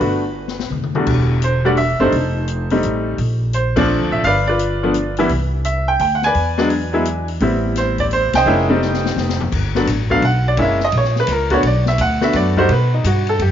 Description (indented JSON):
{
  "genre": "jazz piano trio",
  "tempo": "170 BPM",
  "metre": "3/4",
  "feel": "swing 64% on 8ths",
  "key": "G major",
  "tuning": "A4 = 440 Hz",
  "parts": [
    { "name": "bright upright piano", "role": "melody", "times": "0.0-13.5 s", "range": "E2 to Ab5", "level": "-17 LUFS", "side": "equal", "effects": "none" },
    { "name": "upright bass", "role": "bass", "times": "0.0-13.5 s", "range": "E1 to B2", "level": "-19 LUFS", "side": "equal", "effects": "none" },
    { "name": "open jazz drum kit", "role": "drums", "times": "0.0-13.5 s", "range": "crash cymbal, hi-hat, kick drum, ride cymbal, snare drum, toms", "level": "-26 LUFS", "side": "left 6 dB", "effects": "none" }
  ],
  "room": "light reverb, studio ambience",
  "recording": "1960s-style stereo, nothing above 7.5 kHz",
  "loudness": "-15 LUFS",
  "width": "side -10 dB against mid",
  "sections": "0.0-1.1 A section; 1.1-9.5 B section; 9.5-13.5 C section",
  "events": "drum fill 0.4-1.1, 8.8-9.5; band accent 3.7, 8.3; upright piano solo 9.5-13.5",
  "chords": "0.0 Gmaj9; 1.1 Em11; 2.1 F7; 3.2 Bbmaj7; 4.2 G7; 5.3 Cadd9; 6.4 E7; 7.4 Am7; 8.5 F9; 9.5 Gmaj9; 10.6 F#7; 11.6 Bm7; 12.7 B5",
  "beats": "| 0.01 0.37 0.72 | 1.07 1.43 1.78 | 2.13 2.48 2.83 | 3.19 3.54 3.89 | 4.24 4.59 4.95 | 5.30 5.65 6.00 | 6.35 6.71 7.06 | 7.41 7.76 8.12 | 8.47 8.82 9.17 | 9.52 9.88 10.23 | 10.58 10.94 11.29 | 11.64 11.99 12.35 | 12.70 13.05 13.40"
}